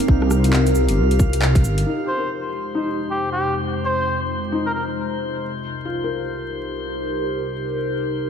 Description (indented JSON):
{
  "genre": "future garage",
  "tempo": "135 BPM",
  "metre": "4/4",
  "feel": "swing 61% on 16ths",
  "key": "unclear",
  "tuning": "A4 = 439 Hz",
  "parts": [
    { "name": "felt-muted upright piano", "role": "accompaniment", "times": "0.0-8.3 s", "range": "Bb3 to Bb4", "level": "-29 LUFS", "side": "left 3 dB", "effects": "sidechain pumping, tape echo" },
    { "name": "warbly tape-like pad", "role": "sustained chords", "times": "0.0-8.3 s", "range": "C2 to Bb4", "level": "-24 LUFS", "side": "equal", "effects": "chorus, built-in reverb, phaser, sidechain pumping" },
    { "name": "garage drum kit", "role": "drums", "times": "0.0-1.8 s", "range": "cabasa, handclaps, hi-hat, rim click", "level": "-27 LUFS", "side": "equal", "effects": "none" },
    { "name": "drifting glass-harmonics texture", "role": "texture", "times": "0.0-8.3 s", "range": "C5 to F5", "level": "-31 LUFS", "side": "left 4 dB", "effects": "chorus, built-in reverb" },
    { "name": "dark detuned saw bass", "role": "bass", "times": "0.1-1.8 s", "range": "G1 to C2", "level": "-18 LUFS", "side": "equal", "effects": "tube saturation, sidechain pumping" },
    { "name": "electronic kick drum", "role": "drums", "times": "0.1-1.6 s", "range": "none", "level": "-15 LUFS", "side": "equal", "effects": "none" },
    { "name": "trumpet with cup mute", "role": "melody", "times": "2.1-4.8 s", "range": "G4 to C5", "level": "-25 LUFS", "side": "equal", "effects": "vintage 12-bit sampler grit, tape echo" }
  ],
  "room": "moderate lush hall reverb, RT60 2.0 s",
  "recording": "vinyl crackle",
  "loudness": "-19 LUFS",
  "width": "side -7 dB against mid",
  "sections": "0.0-1.9 A section; 1.9-8.3 B section",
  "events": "filter sweep on ambient pad 1.9-8.3",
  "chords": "0.0 Cm7; 1.9 Fm9; 5.4 Cm7",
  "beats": "| 0.08 0.53 0.97 1.42 | 1.86 2.30 2.75 3.19 | 3.64 4.08 4.53 4.97 | 5.42 5.86 6.30 6.75 | 7.19 7.64 8.08"
}